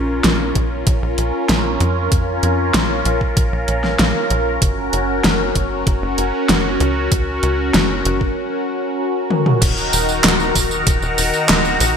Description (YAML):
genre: synthwave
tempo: 96 BPM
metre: 4/4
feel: straight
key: Bb minor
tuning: A4 = 440 Hz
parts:
  - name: phased analog pad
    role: sustained chords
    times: 0.0-12.0 s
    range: Eb3 to Bb5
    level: -19 LUFS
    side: equal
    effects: phaser, chorus, sidechain pumping
  - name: tight sequencer bass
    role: bass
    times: 0.0-12.0 s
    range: Eb1 to F2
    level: -21 LUFS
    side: equal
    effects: tube saturation, sidechain pumping
  - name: pop drum kit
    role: drums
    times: 0.2-11.9 s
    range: crash cymbal, handclaps, hi-hat, snare drum, tambourine, toms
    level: -18 LUFS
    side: equal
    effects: overdrive, gated reverb
  - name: electronic kick drum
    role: drums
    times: 0.6-11.0 s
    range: none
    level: -18 LUFS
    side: equal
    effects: none
room: moderate plate reverb, RT60 2.3 s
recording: bright 1980s-style digital production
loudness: -15 LUFS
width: side -7 dB against mid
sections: 0.0-9.6 A section; 9.6-12.0 B section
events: drum fill 9.3-9.6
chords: 0.0 Bbm; 4.6 Gb; 9.6 Ebm